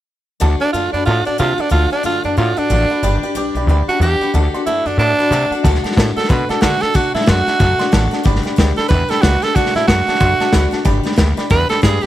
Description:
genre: rockabilly.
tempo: 184 BPM.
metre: 4/4.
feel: swing 61% on 8ths.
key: D mixolydian.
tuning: A4 = 441 Hz.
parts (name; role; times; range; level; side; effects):
dark upright piano; accompaniment; 0.4-12.1 s; D5 to D6; -26 LUFS; right 3 dB; none.
picked steel-string acoustic guitar; accompaniment; 0.4-12.1 s; D3 to B4; -23 LUFS; left 6 dB; none.
upright bass; bass; 0.4-12.1 s; G1 to D3; -17 LUFS; equal; none.
raspy tenor saxophone; melody; 0.6-12.1 s; D4 to B4; -17 LUFS; right 3 dB; tape echo.
vintage drum kit; drums; 5.6-12.1 s; hi-hat, kick drum, snare drum; -16 LUFS; equal; none.
room: studio reverb.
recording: none.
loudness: -13 LUFS.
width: side -13 dB against mid.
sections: 0.4-5.6 A section; 5.6-12.1 B section.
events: upright piano fill 7.6-8.2, 10.2-10.9.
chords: 0.4 D; 3.0 G; 4.3 D; 8.2 G; 9.6 D; 10.9 G.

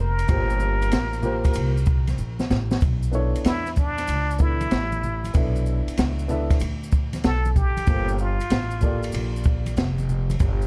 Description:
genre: hip hop, jazz-hop.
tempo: 95 BPM.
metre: 4/4.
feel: swing 66% on 16ths.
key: unclear.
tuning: A4 = 441 Hz.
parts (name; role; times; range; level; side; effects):
trumpet with plunger mute; melody; 0.0-9.1 s; D4 to Bb4; -31 LUFS; equal; tape echo.
upright bass; bass; 0.0-10.7 s; F1 to E2; -27 LUFS; equal; none.
open jazz drum kit; drums; 0.2-10.6 s; hi-hat, kick drum, ride cymbal, snare drum; -26 LUFS; equal; none.
maracas and congas; percussion; 0.2-10.7 s; none; -37 LUFS; equal; none.
dark grand piano; accompaniment; 0.3-9.7 s; Bb3 to E5; -32 LUFS; equal; none.
room: studio ambience.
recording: dark, warm production.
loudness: -23 LUFS.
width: mono.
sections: 0.0-2.8 A section; 2.8-10.7 B section.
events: drum fill 2.2-2.8; muted trumpet solo 2.8-10.7.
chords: 0.0 Gm11; 2.8 Bm11; 7.9 Gm9.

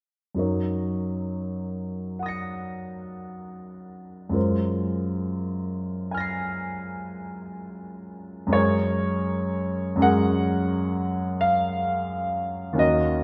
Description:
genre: classical, impressionist solo piano.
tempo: 38-47 BPM (dotted quarters).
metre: 9/8.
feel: rubato.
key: Gb lydian.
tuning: A4 = 438 Hz.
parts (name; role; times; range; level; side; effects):
clear concert grand piano; solo; 0.3-13.2 s; Eb2 to Db7; -26 LUFS; equal; none.
room: wet scoring stage reverb, RT60 1.6 s.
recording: none.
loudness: -26 LUFS.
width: mono.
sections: 0.4-8.5 A section; 8.5-13.2 B section.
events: none.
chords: 0.4 Gb6; 4.4 Ab13/Gb; 8.5 Gbadd9.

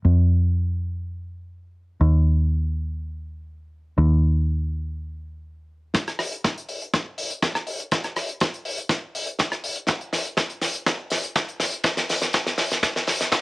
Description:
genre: nu-disco, nu disco.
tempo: 122 BPM.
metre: 4/4.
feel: straight.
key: unclear.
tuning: A4 = 440 Hz.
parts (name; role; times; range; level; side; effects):
deep dub fingered electric bass; bass; 0.0-5.9 s; Eb2 to F2; -19 LUFS; equal; none.
damped 70s drum kit; drums; 5.9-13.4 s; hi-hat, rim click, snare drum; -24 LUFS; equal; high-pass filter on hats, cassette tape, high-pass filter on snare, high-pass filter on room.
kick drum; drums; 5.9-13.4 s; none; -22 LUFS; equal; high-pass filter on kick, cassette tape, high-pass filter on snare, high-pass filter on room.
room: little or no reverb.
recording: home recording on cassette.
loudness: -21 LUFS.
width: side -24 dB against mid.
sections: 0.0-5.9 A section; 5.9-13.4 B section.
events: build-up 5.9-13.4; drum fill 5.9-13.4.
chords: none.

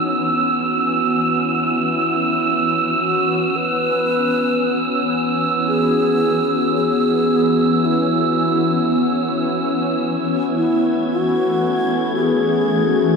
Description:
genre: ambient.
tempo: 56 BPM.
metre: 4/4.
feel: straight.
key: C# minor.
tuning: A4 = 440 Hz.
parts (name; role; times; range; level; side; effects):
bright reedy wooden-headed alto flute; melody; 0.0-13.2 s; D#4 to B4; -22 LUFS; left 1 dB; ping-pong delay.
shimmering ambient pad; sustained chords; 0.0-13.2 s; E3 to F#4; -19 LUFS; left 1 dB; chorus, built-in reverb.
wind-like tuned noise texture; texture; 0.0-13.2 s; E6 to G#6; -21 LUFS; right 4 dB; built-in reverb.
room: wet huge ambient reverb, RT60 8.5 s.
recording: in a vast, echoing space.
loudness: -16 LUFS.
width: side -5 dB against mid.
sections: 0.0-13.2 A section.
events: fade-in on ambient pad 0.0-13.2; fade-in on alto flute 0.0-13.2.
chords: 0.0 C#m11; 10.0 F#m9.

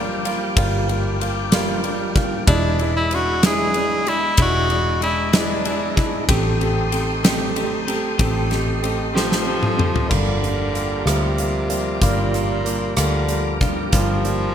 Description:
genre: six-eight pop ballad.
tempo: 63 BPM (dotted quarters).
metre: 6/8.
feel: straight.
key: G minor.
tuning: A4 = 438 Hz.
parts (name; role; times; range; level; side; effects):
warm grand piano; accompaniment; 0.0-14.5 s; G3 to G4; -25 LUFS; right 2 dB; none.
tonewheel organ; sustained chords; 0.0-14.5 s; G4 to Eb6; -29 LUFS; equal; chorus vibrato, slow rotary speaker.
twelve-string electric guitar; arpeggios; 0.0-14.5 s; G2 to G#4; -30 LUFS; left 6 dB; phaser, ping-pong delay.
vintage muted fingered electric bass; bass; 0.0-14.5 s; E1 to D2; -24 LUFS; equal; none.
huge arena drum kit; drums; 0.3-14.4 s; crash cymbal, hi-hat, kick drum, ride cymbal, rim click, snare drum, toms; -22 LUFS; equal; none.
clear tenor saxophone; melody; 2.5-6.1, 9.2-14.5 s; Bb2 to G#4; -23 LUFS; equal; none.
room: light reverb, studio ambience.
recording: bright 1980s-style digital production.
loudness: -17 LUFS.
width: side -9 dB against mid.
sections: 0.0-10.1 A section; 10.1-14.5 B section.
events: drum fill 9.2-10.1.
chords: 0.0 Gm7; 2.5 E7; 6.3 Am7b5; 10.1 Gm7.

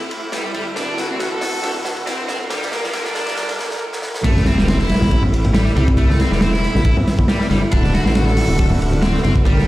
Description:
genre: breakbeat, breaks.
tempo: 138 BPM.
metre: 4/4.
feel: swing 53% on 16ths.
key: A phrygian.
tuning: A4 = 440 Hz.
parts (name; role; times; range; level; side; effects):
warm symphonic string section; sustained chords; 0.0-9.7 s; D3 to Bb4; -24 LUFS; right 1 dB; vintage 12-bit sampler grit, sidechain pumping.
crunchy breakbeat drum kit; drums; 0.1-9.7 s; crash cymbal, hi-hat, kick drum, ride cymbal, snare drum; -20 LUFS; equal; high-pass filter on kick, high-pass filter on cymbals, high-pass filter on hats, high-pass filter on snare, high-pass filter on room.
tight distorted guitar; riff; 0.3-9.7 s; F3 to A4; -24 LUFS; equal; distortion, dub echo.
dark detuned saw bass; bass; 0.5-9.7 s; D1 to D2; -18 LUFS; equal; none.
sub drop; sound effects; 4.2-6.0 s; none; -25 LUFS; equal; none.
congas; percussion; 4.3-9.7 s; none; -23 LUFS; left 1 dB; none.
room: light reverb, small room ambience.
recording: played on a big sound system in a bare room, stone room reverb, high-pass filter.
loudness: -15 LUFS.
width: side -16 dB against mid.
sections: 0.0-4.2 A section; 4.2-9.7 B section.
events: build-up 0.0-4.2; drum fill 0.0-3.8, 3.9-4.2; drop 4.2-9.7; impact 4.2-6.0.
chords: 0.0 Am; 0.8 D7; 2.5 Gm7; 4.2 Am; 7.7 D7.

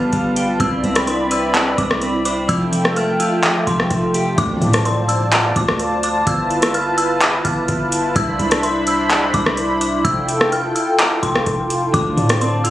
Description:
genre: hip hop, atmospheric cloud-rap.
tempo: 127 BPM.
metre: 4/4.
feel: half-time.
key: D dorian.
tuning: A4 = 440 Hz.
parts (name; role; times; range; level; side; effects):
dark detuned synth bell; melody; 0.0-12.7 s; C6 to F6; -23 LUFS; left 1 dB; chorus, tape echo.
warm analog pad; sustained chords; 0.0-12.7 s; C4 to B5; -20 LUFS; equal; chorus, sidechain pumping.
clean electric guitar; arpeggios; 0.0-4.4, 11.9-12.7 s; D3 to C5; -21 LUFS; right 1 dB; tape echo.
long sustained 808-style bass; bass; 0.0-12.7 s; F1 to A2; -24 LUFS; equal; none.
booming analog drum machine; drums; 0.1-12.7 s; handclaps, hi-hat, kick drum, rim click; -19 LUFS; equal; overdrive.
impact; sound effects; 4.4-6.3 s; none; -28 LUFS; equal; none.
room: light reverb.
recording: recorded on a phone in the room, studio reverb.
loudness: -15 LUFS.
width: side -14 dB against mid.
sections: 0.0-4.4 A section; 4.4-12.7 B section.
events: impact 4.4-6.3.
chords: 0.0 G9; 0.6 Cmaj9; 2.5 Fmaj9; 4.4 Dm7; 6.3 G13; 8.2 Cmaj9; 10.0 Fmaj9; 11.9 Dm7.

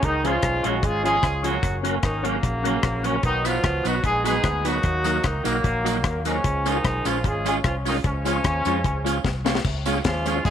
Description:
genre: ska.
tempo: 150 BPM.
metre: 4/4.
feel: straight.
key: Db mixolydian.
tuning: A4 = 440 Hz.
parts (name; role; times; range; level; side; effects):
warm horn section; melody; 0.0-10.5 s; Db3 to Ab4; -24 LUFS; equal; none.
vintage muted fingered electric bass; bass; 0.0-10.5 s; Gb1 to F2; -28 LUFS; equal; none.
deep reggae drum kit; drums; 0.0-10.5 s; crash cymbal, hi-hat, kick drum, rim click, snare drum; -26 LUFS; left 2 dB; tape echo.
clean electric guitar; accompaniment; 0.2-10.5 s; F3 to F4; -29 LUFS; right 13 dB; none.
overdriven tonewheel organ; stabs; 0.2-10.4 s; Db4 to Cb5; -30 LUFS; left 10 dB; chorus vibrato, fast rotary speaker.
tambourine; percussion; 3.4-10.3 s; none; -39 LUFS; right 12 dB; tape echo.
room: light reverb, small room ambience.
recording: 1960s-style stereo with parts hard left and right.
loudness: -20 LUFS.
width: side -9 dB against mid.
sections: 0.0-9.7 A section.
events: drum fill 9.2-9.7.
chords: 0.0 Db; 1.6 Gb; 3.2 Cb; 4.8 Ebm; 6.4 Db.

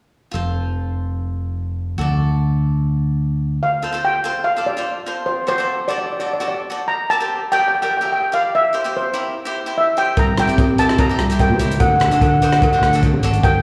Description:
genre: calypso.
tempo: 147 BPM.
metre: 4/4.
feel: straight.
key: F major.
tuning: A4 = 439 Hz.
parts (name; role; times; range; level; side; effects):
cavaquinho; accompaniment; 0.3-13.4 s; D4 to E5; -28 LUFS; equal; slapback echo.
fingered electric bass; bass; 0.3-3.6, 10.2-13.6 s; F1 to D3; -20 LUFS; equal; none.
steel pan; melody; 3.6-13.6 s; C5 to Bb5; -21 LUFS; equal; slapback echo, tape echo.
compact cocktail drum kit; drums; 10.2-13.5 s; hi-hat, kick drum, rim click; -21 LUFS; equal; none.
cowbell; percussion; 10.2-13.5 s; none; -28 LUFS; equal; slapback echo.
room: moderate club reverb, RT60 0.8 s.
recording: live gig heard through the venue's PA, recital hall reverb, studio ambience.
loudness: -18 LUFS.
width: mono.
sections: 0.3-3.6 A section; 3.6-13.6 B section.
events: none.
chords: 0.3 F; 2.0 D; 3.6 F; 5.3 D7; 6.9 Gm; 8.5 C; 10.2 C7; 11.8 D7.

